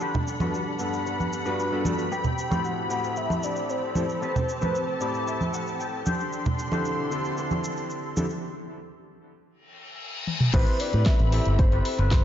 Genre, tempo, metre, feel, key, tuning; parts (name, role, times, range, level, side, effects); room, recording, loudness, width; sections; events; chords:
nu-disco, nu disco; 114 BPM; 4/4; straight; A dorian; A4 = 436 Hz
muted studio string section; sustained chords; 0.0-12.2 s; G3 to C6; -32 LUFS; left 1 dB; sidechain pumping
electric guitar with an envelope filter; riff; 0.0-12.2 s; C4 to G5; -36 LUFS; left 3 dB; wide subtle chorus, low-pass filter, diffuse ambient delay
cabasa and congas; percussion; 0.0-8.4 s; -30 LUFS; right 1 dB
warm electric grand piano; accompaniment; 0.4-12.2 s; G2 to B5; -32 LUFS; equal; diffuse ambient delay
wide unison lead; melody; 2.1-5.8, 10.5-12.2 s; C5 to G5; -31 LUFS; left 1 dB; cassette tape, analog delay
reverse cymbal; sound effects; 9.7-10.5 s; -34 LUFS; left 4 dB
pop drum kit; drums; 10.3-12.2 s; crash cymbal, hi-hat, snare drum, toms; -28 LUFS; left 1 dB; low-pass filter on cymbals, studio reverb, low-pass filter on toms, low-pass filter on hats, low-pass filter on snare
fingered electric bass with an envelope filter; bass; 10.5-12.2 s; G1 to A2; -22 LUFS; equal
electronic kick drum; drums; 10.5-12.2 s; -21 LUFS; equal; studio reverb
moderate lush hall reverb, RT60 2.1 s; dreamy mix soaked in reverb, nothing above 7.5 kHz; -24 LUFS; side -10 dB against mid
0.0-10.5 A section; 10.5-12.2 B section
clean electric guitar fill 4.7-6.3; break 8.4-10.5; reverse cymbal 9.7-10.5; drum fill 10.3; drop 10.5-12.2
0.0 Gmaj7; 2.1 Am9; 6.1 D7sus4; 8.4 N.C.; 10.5 Am9